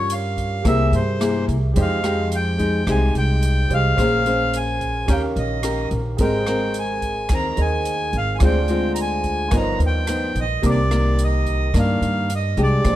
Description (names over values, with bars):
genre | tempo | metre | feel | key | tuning
bossa nova | 108 BPM | 4/4 | straight | unclear | A4 = 440 Hz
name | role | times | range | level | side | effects
accordion | melody | 0.0-13.0 s | C5 to Bb5 | -24 LUFS | equal | none
nylon-string guitar | accompaniment | 0.0-13.0 s | G2 to C5 | -23 LUFS | left 2 dB | none
warm concert grand piano | accompaniment | 0.0-13.0 s | F4 to D6 | -29 LUFS | right 5 dB | none
upright bass | bass | 0.0-13.0 s | G1 to G2 | -22 LUFS | equal | none
swinging big-band drum kit | drums | 0.1-13.0 s | hi-hat, kick drum, rim click | -27 LUFS | equal | none
room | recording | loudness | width
little or no reverb | dark, warm production | -18 LUFS | side -13 dB against mid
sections
0.0-13.0 A section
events
none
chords
0.0 Gm7b5; 0.6 C7b13; 1.8 Fm9; 4.0 Bbm9; 5.1 Eb7; 6.2 Abmaj9; 8.4 Dm7b5; 9.5 G7alt; 10.6 Cm9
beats
0.09 0.65 1.20 | 1.76 2.31 2.87 3.42 | 3.98 4.53 5.08 5.64 | 6.19 6.75 7.30 7.86 | 8.41 8.96 9.52 10.07 | 10.63 11.18 11.74 12.29 | 12.85